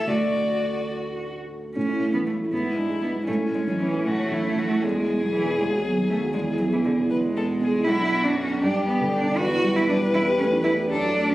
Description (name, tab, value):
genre	quick classical-period movement for piano trio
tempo	78 BPM (dotted quarters)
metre	6/8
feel	rubato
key	A major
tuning	A4 = 441 Hz
part	rich violin	melody	0.0-11.3 s	C#4 to D5	-27 LUFS	left 2 dB	none
part	warm cello	second line	0.0-11.3 s	D3 to F#4	-26 LUFS	right 2 dB	none
part	dark baby grand piano	accompaniment	0.0-11.3 s	A1 to A4	-24 LUFS	right 1 dB	none
room	moderate recital hall reverb, RT60 1.4 s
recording	recorded on a phone in the room, club reverb, compression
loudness	-21 LUFS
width	side -16 dB against mid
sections	0.0-1.8 A section; 1.8-11.3 B section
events	none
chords	0.1 D; 1.8 A; 2.5 E7/G#; 3.3 A; 4.8 E; 5.6 B/D#; 6.3 E; 7.9 Bm; 8.6 G; 9.4 Em; 10.1 A5/E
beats	| 0.09 0.93 | 1.76 2.52 | 3.27 4.07 | 4.83 5.58 | 6.33 7.11 | 7.87 8.63 | 9.38 10.14 | 10.91